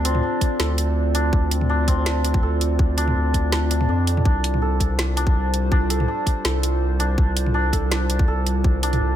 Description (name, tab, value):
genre	half-time drum and bass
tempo	164 BPM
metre	4/4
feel	swing 54% on 16ths, half-time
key	D minor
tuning	A4 = 438 Hz
part	dark analog pad	sustained chords	0.0-9.2 s	G3 to D5	-27 LUFS	equal	chorus, phaser, vintage 12-bit sampler grit, sidechain pumping
part	santur	arpeggios	0.0-9.2 s	C4 to D5	-27 LUFS	equal	dub echo
part	saturated sub bass	bass	0.0-9.2 s	C2 to F2	-21 LUFS	equal	tube saturation
part	drum and bass drum kit	drums	0.1-9.0 s	hi-hat, snare drum, toms	-25 LUFS	right 1 dB	none
part	electronic kick drum	drums	0.4-8.7 s	none	-19 LUFS	equal	none
room	light reverb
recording	none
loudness	-18 LUFS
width	side -11 dB against mid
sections	0.0-9.2 A section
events	none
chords	0.0 Dm7; 4.3 Csus4